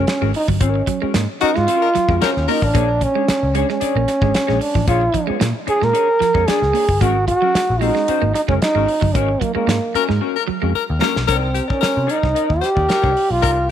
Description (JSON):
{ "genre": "funk", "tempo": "112 BPM", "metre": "4/4", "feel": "straight", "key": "unclear", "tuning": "A4 = 437 Hz", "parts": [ { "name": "breathy trombone", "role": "melody", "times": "0.0-13.7 s", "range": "Bb3 to Bb4", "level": "-18 LUFS", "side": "right 2 dB", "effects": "tape echo" }, { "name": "mellow electric guitar", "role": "accompaniment", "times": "0.0-13.7 s", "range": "Db4 to Eb5", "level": "-26 LUFS", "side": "left 15 dB", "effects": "lush chorus" }, { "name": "electric guitar at the edge of break-up", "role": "riff", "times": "0.0-11.1 s", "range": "F3 to Bb3", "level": "-26 LUFS", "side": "right 15 dB", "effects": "none" }, { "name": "vintage muted picked electric bass", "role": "bass", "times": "0.0-13.7 s", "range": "Gb1 to C3", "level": "-20 LUFS", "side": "left 1 dB", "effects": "none" }, { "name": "damped 70s drum kit", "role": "drums", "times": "0.1-13.6 s", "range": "hi-hat, kick drum, snare drum", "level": "-22 LUFS", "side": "equal", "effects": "none" }, { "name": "warm tenor saxophone", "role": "second line", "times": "1.4-2.6, 10.0-13.5 s", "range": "Gb4 to C5", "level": "-23 LUFS", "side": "left 11 dB", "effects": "tape echo" } ], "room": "light reverb, studio reverb", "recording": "1960s-style stereo with parts hard left and right", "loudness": "-15 LUFS", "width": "side -10 dB against mid", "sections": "0.0-11.3 A section; 11.3-13.7 B section", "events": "band accent 0.6-2.7, 9.1-11.3; drum fill 10.2-11.3", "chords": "0.0 Ab9sus4; 2.7 Bb7#9; 7.0 Ab9sus4; 11.3 Cm9" }